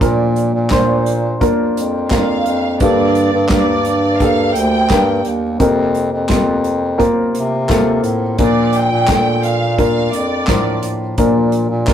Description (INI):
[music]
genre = piano-driven pop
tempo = 86 BPM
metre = 4/4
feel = straight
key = Bb major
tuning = A4 = 440 Hz
[part]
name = dark upright piano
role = accompaniment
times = 0.0-11.9 s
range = G2 to C5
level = -16 LUFS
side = equal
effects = none
[part]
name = clear bass clarinet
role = bass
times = 0.0-11.9 s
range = D2 to C3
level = -17 LUFS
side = equal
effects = none
[part]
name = unplugged drum kit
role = drums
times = 0.0-11.9 s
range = handclaps, hi-hat, kick drum, snare drum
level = -19 LUFS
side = equal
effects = none
[part]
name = warm symphonic violin section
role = melody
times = 2.1-10.8 s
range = D5 to G5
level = -19 LUFS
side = right 1 dB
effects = none
[sound]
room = moderate small room ambience, RT60 0.5 s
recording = rough rehearsal-room recording, tube saturation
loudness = -13 LUFS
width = side -9 dB against mid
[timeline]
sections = 0.0-11.9 A section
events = none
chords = 0.0 Bb; 2.8 Gmadd9; 5.6 Fsus4; 8.4 Bb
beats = | 0.01 0.71 1.41 2.11 | 2.81 3.51 4.21 4.90 | 5.60 6.30 7.00 7.70 | 8.39 9.09 9.79 10.49 | 11.19 11.88